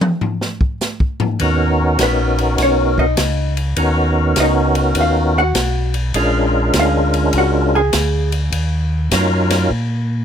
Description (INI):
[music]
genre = soul jazz organ trio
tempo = 101 BPM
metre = 4/4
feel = swing 67% on 8ths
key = unclear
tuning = A4 = 438 Hz
[part]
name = open jazz drum kit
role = drums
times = 0.0-9.9 s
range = hi-hat, kick drum, ride cymbal, snare drum, toms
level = -21 LUFS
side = left 1 dB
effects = none
[part]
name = percussive tonewheel organ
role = melody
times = 1.4-9.7 s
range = Gb3 to A#4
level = -16 LUFS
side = right 1 dB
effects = slow rotary speaker, overdrive, chorus vibrato
[part]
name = mellow tonewheel organ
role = bass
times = 1.4-10.2 s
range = A#1 to Bb2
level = -18 LUFS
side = equal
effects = slow rotary speaker
[part]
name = hollow-body jazz guitar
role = accompaniment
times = 2.0-8.3 s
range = B3 to Ab5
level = -19 LUFS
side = left 1 dB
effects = none
[sound]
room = little or no reverb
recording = close, detailed microphones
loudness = -14 LUFS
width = side -8 dB against mid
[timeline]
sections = 0.0-10.2 A section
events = hollow-body jazz guitar solo 0.0-10.2; drum solo 0.0-1.4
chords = 0.0 N.C.; 1.4 Bmaj7; 6.2 Bb7#9; 8.5 Ebm7; 9.7 N.C.